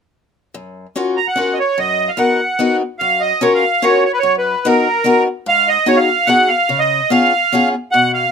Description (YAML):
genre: musette waltz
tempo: 146 BPM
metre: 3/4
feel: straight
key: F# major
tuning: A4 = 440 Hz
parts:
  - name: picked acoustic archtop guitar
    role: accompaniment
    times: 0.5-8.2 s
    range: F#2 to A#4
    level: -17 LUFS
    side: left 3 dB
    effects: none
  - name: accordion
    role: melody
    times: 1.2-8.3 s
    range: A#4 to A#5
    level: -14 LUFS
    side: right 2 dB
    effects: light tremolo tuning
room: light reverb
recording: close, detailed microphones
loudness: -12 LUFS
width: side -6 dB against mid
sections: 0.5-3.0 A section; 3.0-8.3 B section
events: none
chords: 0.5 F#maj7; 1.8 Bmaj7/F#; 3.0 F#maj7; 4.2 Bmaj7/F#; 5.5 G#m7; 6.7 C#7